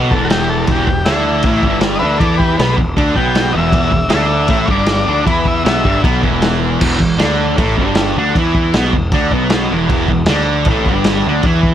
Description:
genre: garage rock duo or trio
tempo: 156 BPM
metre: 4/4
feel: straight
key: E minor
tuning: A4 = 440 Hz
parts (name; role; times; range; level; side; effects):
- fuzz guitar; riff; 0.0-11.7 s; E2 to E4; -15 LUFS; equal; distortion
- fuzz picked electric bass; bass; 0.0-11.7 s; E1 to E2; -19 LUFS; equal; overdrive
- combo organ; melody; 0.1-6.0 s; E4 to G5; -18 LUFS; left 2 dB; none
- vintage drum kit; drums; 0.1-11.7 s; crash cymbal, kick drum, snare drum; -17 LUFS; equal; none
room: studio ambience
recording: none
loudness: -12 LUFS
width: side -10 dB against mid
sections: 0.0-6.8 A section; 6.8-11.7 B section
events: transistor combo organ solo 0.0-6.8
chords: 0.0 Em

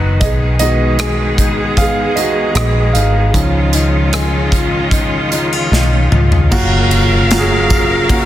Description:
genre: pop ballad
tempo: 76 BPM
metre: 4/4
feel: straight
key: F# major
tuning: A4 = 440 Hz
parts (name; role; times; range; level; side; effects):
- warm concert grand piano; accompaniment; 0.0-8.3 s; C#3 to F#5; -18 LUFS; right 2 dB; none
- bright studio string section; sustained chords; 0.0-8.3 s; C#3 to E#5; -18 LUFS; equal; none
- fingerpicked steel-string acoustic guitar; arpeggios; 0.0-8.3 s; C#3 to B4; -22 LUFS; left 5 dB; digital delay
- vintage muted fingered electric bass; bass; 0.0-8.3 s; F#1 to C#2; -16 LUFS; equal; none
- modern studio drum kit; drums; 0.2-8.3 s; crash cymbal, hi-hat, kick drum, ride cymbal, rim click, snare drum, toms; -17 LUFS; equal; soft clipping on snare
- tambourine; percussion; 6.5-8.3 s; none; -31 LUFS; right 7 dB; none
- impact; sound effects; 6.6-8.3 s; none; -23 LUFS; equal; none
room: light reverb, small room ambience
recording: dense, heavily limited modern master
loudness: -11 LUFS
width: side -12 dB against mid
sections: 0.0-6.5 A section; 6.5-8.3 B section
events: grand piano solo 0.0-6.5; drum fill 5.7-6.5; impact 6.5-8.3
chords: 0.2 G#m/B; 3.3 C#add9; 6.5 F#maj7

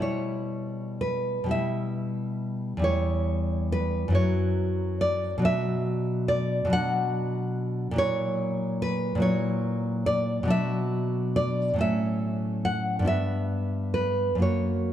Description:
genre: romantic piece for solo classical guitar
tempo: 39-49 BPM (dotted quarters)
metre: 6/8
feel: rubato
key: B minor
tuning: A4 = 438 Hz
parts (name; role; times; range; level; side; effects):
- nylon-string guitar; solo; 0.0-14.9 s; E2 to F#5; -24 LUFS; equal; none
room: moderate concert hall reverb, RT60 2.4 s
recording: dark, warm production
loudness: -24 LUFS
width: side -11 dB against mid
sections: 0.0-14.9 A section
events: none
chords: 0.0 Em/B; 2.8 C#dim/E; 4.1 F#5; 5.4 Bm; 8.0 F#7/A#; 10.5 Bm; 11.8 F#m/A; 13.1 Em/G; 14.4 F#

